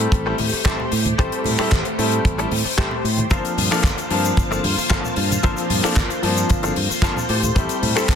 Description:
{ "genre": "nu-disco, nu disco", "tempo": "113 BPM", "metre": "4/4", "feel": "straight", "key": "G dorian", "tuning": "A4 = 438 Hz", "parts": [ { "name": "bright grand piano", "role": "accompaniment", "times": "0.0-8.1 s", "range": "F3 to A5", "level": "-24 LUFS", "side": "left 2 dB", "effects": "sidechain pumping, tape echo" }, { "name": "string machine, full ensemble", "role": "sustained chords", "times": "0.0-8.2 s", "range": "A3 to A5", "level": "-27 LUFS", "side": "right 1 dB", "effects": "ensemble chorus, sidechain pumping" }, { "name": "direct-recorded clean electric guitar", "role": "riff", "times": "0.0-8.2 s", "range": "F4 to G5", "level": "-28 LUFS", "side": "left 2 dB", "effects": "ensemble chorus, tape echo" }, { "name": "fingered electric bass", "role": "bass", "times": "0.0-8.2 s", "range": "G1 to A2", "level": "-24 LUFS", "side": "equal", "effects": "sidechain pumping" }, { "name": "damped 70s drum kit", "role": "drums", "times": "0.0-8.2 s", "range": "finger snaps, handclaps, hi-hat, shaker", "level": "-24 LUFS", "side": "left 4 dB", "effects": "none" }, { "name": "kick drum", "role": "drums", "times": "0.1-8.2 s", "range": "none", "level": "-18 LUFS", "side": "equal", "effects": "soft clipping on kick, soft clipping on snare" }, { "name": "congas", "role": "percussion", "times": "0.4-8.2 s", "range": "none", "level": "-30 LUFS", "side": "right 2 dB", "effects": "none" } ], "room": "small room ambience", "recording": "dense, heavily limited modern master", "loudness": "-17 LUFS", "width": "side -8 dB against mid", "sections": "0.0-8.2 A section", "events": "clean electric guitar fill 2.5-3.3", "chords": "0.0 Am7; 3.3 Gm11; 7.3 Am7" }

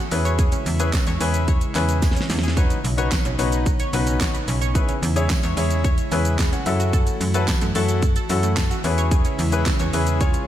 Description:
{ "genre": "dance-pop", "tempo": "110 BPM", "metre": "4/4", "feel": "straight", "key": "unclear", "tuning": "A4 = 439 Hz", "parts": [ { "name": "airy breathy pad", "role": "sustained chords", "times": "0.0-10.5 s", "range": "C#3 to F#4", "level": "-30 LUFS", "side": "equal", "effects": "chorus, sidechain pumping" }, { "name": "analog pluck", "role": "arpeggios", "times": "0.0-10.3 s", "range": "A3 to C#5", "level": "-30 LUFS", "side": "right 1 dB", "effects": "chorus, sidechain pumping, ping-pong delay, slapback echo" }, { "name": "warm concert grand piano", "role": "accompaniment", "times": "0.1-10.4 s", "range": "C#4 to F#5", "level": "-26 LUFS", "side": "left 4 dB", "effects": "sidechain pumping, slapback echo" }, { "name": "slap-like FM bass", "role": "bass", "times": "0.1-10.4 s", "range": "B1 to F#2", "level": "-22 LUFS", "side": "equal", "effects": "sidechain pumping" }, { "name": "pop drum kit", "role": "drums", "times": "0.1-10.5 s", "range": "handclaps, hi-hat, kick drum, shaker, snare drum", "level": "-22 LUFS", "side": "equal", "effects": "none" }, { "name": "tambourine", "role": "percussion", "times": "0.9-9.8 s", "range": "none", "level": "-41 LUFS", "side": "right 8 dB", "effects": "none" } ], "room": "light reverb", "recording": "none", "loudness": "-18 LUFS", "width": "side -12 dB against mid", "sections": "0.0-10.5 A section", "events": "drum fill 2.0-2.6; grand piano fill 6.1-6.9", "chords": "0.1 E6; 2.6 Badd9; 4.8 E6; 6.7 F#m7; 8.8 E6" }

